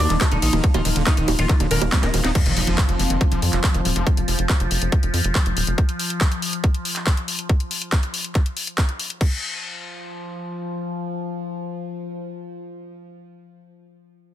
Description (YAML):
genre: psychedelic trance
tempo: 140 BPM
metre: 4/4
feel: straight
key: unclear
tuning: A4 = 441 Hz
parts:
  - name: oud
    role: melody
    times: 0.0-2.2 s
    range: D4 to Bb4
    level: -26 LUFS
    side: left 1 dB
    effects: phaser, sidechain pumping, tape echo
  - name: overtone-sweeping drone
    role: sustained chords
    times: 0.0-12.9 s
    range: F3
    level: -30 LUFS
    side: left 2 dB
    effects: chorus, built-in reverb, sidechain pumping
  - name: tight sequencer bass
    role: bass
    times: 0.0-5.7 s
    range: Eb1 to F2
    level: -22 LUFS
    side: equal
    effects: none
  - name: airy breathy pad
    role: texture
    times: 0.0-4.1 s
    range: Bb3 to C6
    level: -30 LUFS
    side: equal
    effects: chorus, sidechain pumping
  - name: screaming distorted acid line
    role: riff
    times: 0.1-4.1 s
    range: D3 to F4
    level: -28 LUFS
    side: moving between left 4 dB and right 3 dB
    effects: distortion, chorus, auto-pan, vintage 12-bit sampler grit, sidechain pumping, tape echo
  - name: drum and bass drum kit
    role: drums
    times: 0.1-9.3 s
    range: bongos, crash cymbal, handclaps, hi-hat, ride cymbal, snare drum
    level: -25 LUFS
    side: equal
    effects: overdrive
  - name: electronic kick drum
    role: drums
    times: 0.2-9.3 s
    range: none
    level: -18 LUFS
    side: equal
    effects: overdrive
  - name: impact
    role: sound effects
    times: 2.4-4.1 s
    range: none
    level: -29 LUFS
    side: equal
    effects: none
room: digital ambience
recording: dense, heavily limited modern master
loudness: -19 LUFS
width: side -12 dB against mid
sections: 0.0-2.4 A section; 2.4-9.2 B section; 9.2-12.6 C section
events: drop 0.0-2.4; drum fill 1.9-2.4; impact 2.4-4.1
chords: 0.0 Eb5; 2.4 F5; 9.2 N.C.